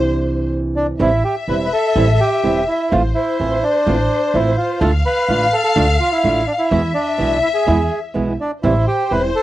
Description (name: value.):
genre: tango.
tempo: 126 BPM.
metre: 4/4.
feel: rubato.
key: A minor.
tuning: A4 = 441 Hz.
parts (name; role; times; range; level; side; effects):
warm studio violin section; second line; 0.0-9.4 s; C5 to F5; -21 LUFS; left 4 dB; none.
flamenco guitar; accompaniment; 0.0-9.3 s; B2 to F4; -20 LUFS; right 3 dB; none.
upright bass; bass; 0.0-9.3 s; E1 to E2; -20 LUFS; right 1 dB; none.
bandoneon; melody; 0.8-9.4 s; D4 to B4; -19 LUFS; right 1 dB; cassette tape.
room: light reverb.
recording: home recording on cassette.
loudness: -14 LUFS.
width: side -14 dB against mid.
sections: 0.0-1.0 A section; 1.0-9.4 B section.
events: violin section solo 0.0-1.0.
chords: 0.0 Cadd9; 1.0 Am7; 2.9 Fmaj7/A; 4.8 Dm; 6.7 E; 8.6 Am7.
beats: 0.03 0.52 | 1.00 1.48 1.96 2.44 | 2.91 3.39 3.86 4.34 | 4.81 5.29 5.76 6.24 | 6.71 7.19 7.67 8.15 | 8.63 9.11.